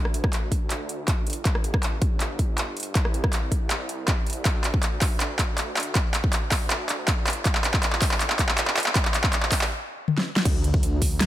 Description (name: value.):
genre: future bass.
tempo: 160 BPM.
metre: 4/4.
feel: half-time.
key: unclear.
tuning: A4 = 440 Hz.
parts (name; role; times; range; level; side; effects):
wide detuned saw bass; bass; 0.0-11.3 s; G1 to D2; -33 LUFS; equal; chorus, sidechain pumping, high-pass filter.
big-room dance drum kit; drums; 0.1-11.3 s; crash cymbal, handclaps, hi-hat, rim click, snare drum, toms; -25 LUFS; equal; overdrive.
electronic kick drum; drums; 0.2-11.1 s; none; -24 LUFS; equal; overdrive.
room: light reverb.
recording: none.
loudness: -22 LUFS.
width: side -13 dB against mid.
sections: 0.0-10.5 A section.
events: build-up 0.0-10.5; drum fill 0.0-9.7, 10.1-10.5; stop 9.7-10.5.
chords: none.